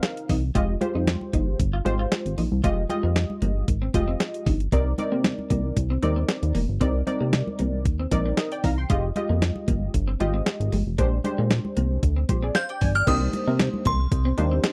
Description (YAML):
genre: early-eighties boogie funk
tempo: 115 BPM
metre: 4/4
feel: straight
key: C minor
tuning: A4 = 440 Hz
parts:
  - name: funky polysynth comp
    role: accompaniment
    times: 0.0-14.7 s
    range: Ab3 to C6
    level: -31 LUFS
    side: equal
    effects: chorus
  - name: crisp 8-bit digital drum machine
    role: drums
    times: 0.0-14.7 s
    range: crash cymbal, hi-hat, kick drum, snare drum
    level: -27 LUFS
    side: equal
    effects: none
  - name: congas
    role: percussion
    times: 0.0-14.7 s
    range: none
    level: -35 LUFS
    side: equal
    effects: none
  - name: clean electric guitar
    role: riff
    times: 0.3-14.6 s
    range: Ab3 to F4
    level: -34 LUFS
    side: equal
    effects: lush chorus
  - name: chorused synth bass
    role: bass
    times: 0.3-14.6 s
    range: F1 to C3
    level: -26 LUFS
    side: equal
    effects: none
  - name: delicate synth tine bell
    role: melody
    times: 12.6-14.6 s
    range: C6 to G6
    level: -30 LUFS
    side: equal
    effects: chorus
room: little or no reverb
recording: dry, close 1970s-style studio recording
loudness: -24 LUFS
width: mono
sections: 0.0-13.1 A section; 13.1-14.7 B section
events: none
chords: 0.0 Cm7; 0.6 Fm9; 4.7 Cm9; 8.9 Fm9; 11.0 Bb13; 13.1 Cm9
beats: 0.03 | 0.55 1.07 1.59 2.12 | 2.64 3.16 3.68 4.20 | 4.72 5.25 5.77 6.29 | 6.81 7.33 7.86 8.38 | 8.90 9.42 9.94 10.46 | 10.98 11.51 12.03 12.55 | 13.07 13.59 14.12 14.64